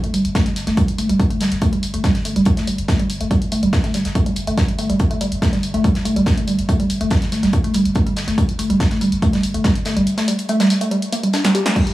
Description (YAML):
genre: driving peak-time techno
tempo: 142 BPM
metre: 4/4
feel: straight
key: unclear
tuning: A4 = 439 Hz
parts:
  - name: woody wave-folded pluck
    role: riff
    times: 0.0-11.8 s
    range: G3 to G4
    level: -19 LUFS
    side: equal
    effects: chorus, overdrive, sidechain pumping, tape echo
  - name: punchy analog drum machine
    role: drums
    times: 0.0-11.9 s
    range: crash cymbal, hi-hat, snare drum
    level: -27 LUFS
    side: equal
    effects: none
  - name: saturated sub bass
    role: bass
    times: 0.1-10.1 s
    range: G1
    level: -28 LUFS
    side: equal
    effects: overdrive, sidechain pumping, low-pass filter
  - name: modern studio drum kit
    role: drums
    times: 0.1-11.9 s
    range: hi-hat, snare drum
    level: -30 LUFS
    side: left 1 dB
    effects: high-pass filter on hats, high-pass filter on snare, high-pass filter on room
  - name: electronic kick drum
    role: drums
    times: 0.4-11.8 s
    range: none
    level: -18 LUFS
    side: equal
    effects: none
room: little or no reverb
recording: none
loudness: -16 LUFS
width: side -16 dB against mid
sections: 0.0-11.9 A section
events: drum fill 11.4-11.8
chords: 0.0 G5